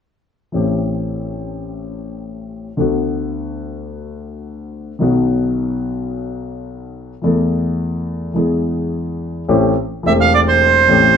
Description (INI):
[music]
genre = tango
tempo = 107 BPM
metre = 4/4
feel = rubato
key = A minor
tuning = A4 = 445 Hz
[part]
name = warm concert grand piano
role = accompaniment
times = 0.5-11.2 s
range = E1 to A4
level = -17 LUFS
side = left 2 dB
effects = none
[part]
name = bandoneon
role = melody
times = 10.1-11.2 s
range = C5 to F5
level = -11 LUFS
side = right 6 dB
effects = none
[sound]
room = wet club reverb, RT60 0.9 s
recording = none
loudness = -15 LUFS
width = side -7 dB against mid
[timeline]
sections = 0.5-9.5 A section; 9.5-11.2 B section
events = none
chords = 0.5 Am7; 2.8 D6; 5.0 B; 7.2 Esus4; 8.4 E; 9.5 Am7